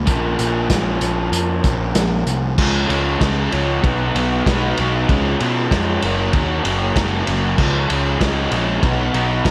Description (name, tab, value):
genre	indie rock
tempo	96 BPM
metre	4/4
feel	straight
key	Db mixolydian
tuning	A4 = 440 Hz
part	raw garage guitar	riff	0.0-9.5 s	Gb2 to Eb4	-22 LUFS	equal	overdrive, spring reverb, slapback echo
part	fuzz picked electric bass	bass	0.0-9.5 s	Gb1 to Cb3	-24 LUFS	equal	overdrive
part	vintage drum kit	drums	0.1-9.5 s	crash cymbal, hi-hat, kick drum, ride cymbal, snare drum	-23 LUFS	equal	none
room	moderate lush hall reverb, RT60 2.3 s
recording	big arena sound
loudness	-18 LUFS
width	mono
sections	0.0-2.6 A section; 2.6-9.5 B section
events	none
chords	0.0 Bbm; 2.6 Db; 3.8 Cb; 5.1 Db; 6.0 Gb; 7.6 Db6; 8.8 Cb